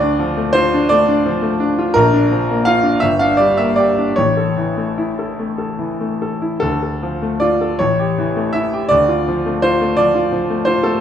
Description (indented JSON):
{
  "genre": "classical, romantic character piece for solo piano",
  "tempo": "48-58 BPM (dotted quarters)",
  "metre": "6/8",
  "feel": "rubato",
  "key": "D minor",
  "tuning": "A4 = 440 Hz",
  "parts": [
    { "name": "bright grand piano", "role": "solo", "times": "0.0-11.0 s", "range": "G1 to F5", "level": "-14 LUFS", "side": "equal", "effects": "none" }
  ],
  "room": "wet large studio reverb, RT60 0.9 s",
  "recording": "heard from further back in the room",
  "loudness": "-14 LUFS",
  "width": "side -9 dB against mid",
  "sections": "0.0-11.0 A section",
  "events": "none",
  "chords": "0.0 Dm; 1.9 Bb; 3.0 Gm; 4.2 A; 6.6 Dm; 7.8 A7; 8.9 Dm"
}